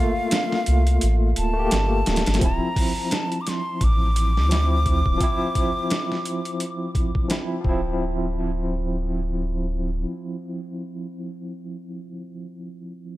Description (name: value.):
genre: trip hop.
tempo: 86 BPM.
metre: 4/4.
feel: swing 58% on 16ths.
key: D minor.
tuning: A4 = 441 Hz.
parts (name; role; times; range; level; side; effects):
breathy mellow silver concert flute; melody; 0.0-7.3 s; F5 to D6; -28 LUFS; left 1 dB; tape echo.
barky tine electric piano; accompaniment; 0.0-13.2 s; F3 to G4; -27 LUFS; equal; medium stereo tremolo, tape echo.
boom bap sampler-style drum kit; drums; 0.3-7.8 s; hi-hat, kick drum, snare drum; -24 LUFS; equal; none.
soft dub sub bass; bass; 0.7-10.0 s; D1 to D2; -22 LUFS; equal; none.
room: little or no reverb.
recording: none.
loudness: -20 LUFS.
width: side -16 dB against mid.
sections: 0.0-2.4 A section; 2.4-8.0 B section; 8.0-10.8 C section.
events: kick drops out 1.0-2.4.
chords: 0.0 Gm7; 2.4 Dm9.